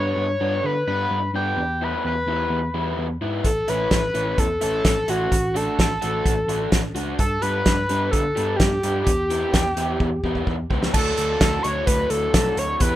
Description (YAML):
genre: indie rock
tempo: 128 BPM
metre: 4/4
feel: straight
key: unclear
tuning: A4 = 438 Hz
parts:
  - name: overdriven synth lead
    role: melody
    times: 0.0-13.0 s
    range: F#4 to C#5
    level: -23 LUFS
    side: equal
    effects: distortion, plate reverb
  - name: raw garage guitar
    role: riff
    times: 0.0-13.0 s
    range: D3 to G4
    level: -28 LUFS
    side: left 1 dB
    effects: overdrive
  - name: tine electric piano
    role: bass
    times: 0.0-13.0 s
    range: A1 to D3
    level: -27 LUFS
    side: equal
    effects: none
  - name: loose indie drum kit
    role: drums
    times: 3.4-12.9 s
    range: crash cymbal, hi-hat, kick drum, snare drum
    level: -22 LUFS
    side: equal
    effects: none
room: light reverb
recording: rough home demo mix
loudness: -19 LUFS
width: side -13 dB against mid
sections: 0.0-10.9 A section; 10.9-13.0 B section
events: drum fill 10.0-10.9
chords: 0.0 G; 1.6 Em; 3.5 A; 5.3 D/A; 7.2 G; 9.1 Em; 10.9 D